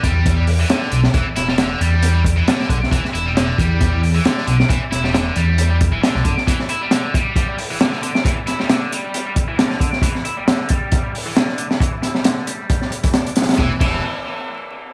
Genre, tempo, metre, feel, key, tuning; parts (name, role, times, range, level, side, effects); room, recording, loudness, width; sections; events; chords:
breakbeat, breaks; 135 BPM; 4/4; swing 54% on 16ths; E minor; A4 = 440 Hz
scooped high-gain guitar; riff; 0.0-14.0 s; D3 to E4; -25 LUFS; equal; distortion, tube saturation, low-pass filter, dub echo
dark detuned saw bass; bass; 0.0-6.3, 13.6-14.0 s; D1 to E2; -20 LUFS; equal
crunchy breakbeat drum kit; drums; 0.0-13.9 s; crash cymbal, hi-hat, kick drum, snare drum; -20 LUFS; equal; dub echo
light reverb, small room reverb; echo-heavy mix, vinyl crackle; -18 LUFS; mono
0.0-13.6 A section; 13.6-14.9 B section
filter sweep on distorted electric guitar 0.0-13.6
0.0 Em; 13.6 N.C.